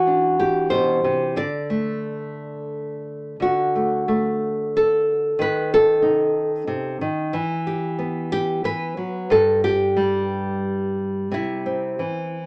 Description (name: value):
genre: folk, solo fingerstyle acoustic guitar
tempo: 91 BPM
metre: 3/4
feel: rubato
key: D mixolydian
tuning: A4 = 440 Hz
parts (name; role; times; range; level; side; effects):
- nylon-string guitar; solo; 0.0-12.5 s; G2 to D5; -22 LUFS; equal; none
room: wet small room reverb, RT60 0.5 s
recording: none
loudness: -22 LUFS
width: mono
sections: 0.0-3.4 A section; 3.4-12.5 B section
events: none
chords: 0.0 Cadd9; 1.4 D5; 5.4 Cm6; 7.3 Em; 9.3 N.C.; 11.3 C